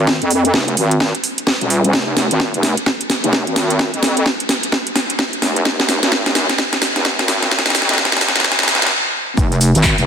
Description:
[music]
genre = bass house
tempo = 129 BPM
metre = 4/4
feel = swing 62% on 16ths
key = F minor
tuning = A4 = 440 Hz
[part]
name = wobble bass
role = bass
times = 0.0-10.1 s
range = Eb1 to F2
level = -17 LUFS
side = equal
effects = chorus, overdrive, sidechain pumping, high-pass filter
[part]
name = electronic kick drum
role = drums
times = 0.1-10.0 s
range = none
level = -20 LUFS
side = equal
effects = high-pass filter on kick
[part]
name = house drum kit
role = drums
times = 0.1-10.1 s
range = cabasa, handclaps, hi-hat, snare drum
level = -15 LUFS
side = equal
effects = none
[sound]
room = wet lush hall reverb, RT60 2.0 s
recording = dense, heavily limited modern master, high-pass filter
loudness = -14 LUFS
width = side -7 dB against mid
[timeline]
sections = 0.0-9.4 A section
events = build-up 0.0-9.4; drum fill 0.0-8.9; filter sweep 0.0-9.4; stop 8.9-9.4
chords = none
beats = | 0.07 0.54 1.00 1.47 | 1.93 2.40 2.86 3.33 | 3.79 4.26 4.72 5.19 | 5.65 6.12 6.58 7.05 | 7.51 7.98 8.44 8.91 | 9.38 9.84

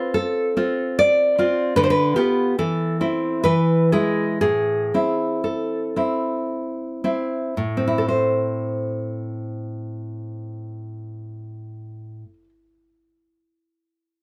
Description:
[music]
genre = romantic piece for solo classical guitar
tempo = 54-78 BPM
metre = 3/4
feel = rubato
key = A minor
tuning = A4 = 441 Hz
[part]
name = nylon-string guitar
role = solo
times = 0.0-12.5 s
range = A2 to D5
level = -22 LUFS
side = equal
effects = none
[sound]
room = light reverb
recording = none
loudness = -21 LUFS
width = mono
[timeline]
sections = 0.0-7.6 A section; 7.6-10.8 B section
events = slowing down 0.6-7.6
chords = 0.0 Dm7; 1.8 Bdim/D; 2.6 Am/E; 3.5 E; 4.4 Am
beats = 0.15 0.99 | 1.77 2.58 3.46 | 4.42 5.44 6.49 | 7.58 8.64 9.72

